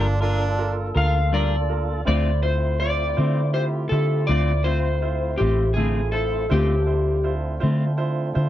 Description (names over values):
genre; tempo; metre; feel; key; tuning
blues; 54 BPM (dotted quarters); 12/8; straight; D minor; A4 = 438 Hz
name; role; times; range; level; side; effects
clear harmonica; second line; 0.0-0.8 s; D4; -27 LUFS; right 5 dB; overdrive
bright upright piano; accompaniment; 0.0-8.5 s; E4 to C5; -31 LUFS; right 5 dB; none
clean electric guitar; accompaniment; 0.0-7.9 s; D3 to Bb4; -26 LUFS; left 4 dB; harmonic tremolo
tonewheel organ; sustained chords; 0.0-8.5 s; A3 to A4; -33 LUFS; right 1 dB; slow rotary speaker
vintage muted fingered electric bass; bass; 0.0-8.5 s; G1 to D3; -22 LUFS; equal; none
electric slide guitar; melody; 1.0-7.3 s; G4 to F5; -24 LUFS; left 2 dB; none
room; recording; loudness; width
little or no reverb; dry, close 1970s-style studio recording; -19 LUFS; side -12 dB against mid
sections
0.0-8.5 A section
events
none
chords
0.0 Gm7; 2.1 Dm7